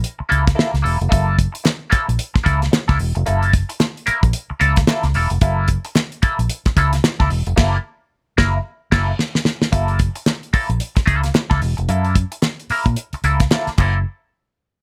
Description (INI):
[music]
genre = funk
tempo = 111 BPM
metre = 4/4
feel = swing 60% on 16ths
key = F# mixolydian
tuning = A4 = 441 Hz
[part]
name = damped 70s drum kit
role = drums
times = 0.0-13.9 s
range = crash cymbal, hi-hat, kick drum, snare drum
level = -20 LUFS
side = equal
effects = none
[part]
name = twangy electric guitar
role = accompaniment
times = 0.2-14.0 s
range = A#3 to A#4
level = -23 LUFS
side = equal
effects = wah
[part]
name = vintage muted fingered electric bass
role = bass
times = 0.2-14.0 s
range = E1 to A#2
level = -21 LUFS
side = equal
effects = none
[part]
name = group handclap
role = percussion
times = 1.7-14.0 s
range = none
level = -33 LUFS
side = equal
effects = none
[sound]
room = little or no reverb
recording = none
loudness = -18 LUFS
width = mono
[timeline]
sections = 0.0-9.7 A section; 9.7-14.1 B section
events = band accent 7.6-9.7; drum fill 8.7-9.7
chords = 0.0 F#7#9; 14.1 N.C.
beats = 0.04 0.58 | 1.11 1.65 2.19 2.73 | 3.27 3.81 4.34 4.88 | 5.42 5.96 6.50 7.04 | 7.58 8.12 8.65 9.19 | 9.73 10.27 10.81 11.35 | 11.89 12.43 12.97 13.51